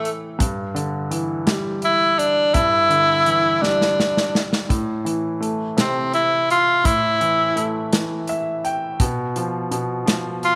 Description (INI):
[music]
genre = six-eight pop ballad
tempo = 56 BPM (dotted quarters)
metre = 6/8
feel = straight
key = A minor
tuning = A4 = 441 Hz
[part]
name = edgy tenor saxophone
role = melody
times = 0.0-10.6 s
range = A3 to F4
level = -19 LUFS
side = equal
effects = slapback echo
[part]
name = clear concert grand piano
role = accompaniment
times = 0.0-10.6 s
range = G2 to G5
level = -27 LUFS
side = equal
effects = none
[part]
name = natural country drum kit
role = drums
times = 0.1-10.6 s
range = hi-hat, kick drum, snare drum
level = -24 LUFS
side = equal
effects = none
[sound]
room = moderate plate reverb, RT60 1.9 s, studio ambience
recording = none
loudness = -20 LUFS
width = mono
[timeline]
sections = 0.0-10.6 A section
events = drum fill 3.6-4.7; grand piano fill 7.9-9.0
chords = 0.4 Em7/G; 4.7 Am; 9.0 B(b5, no3)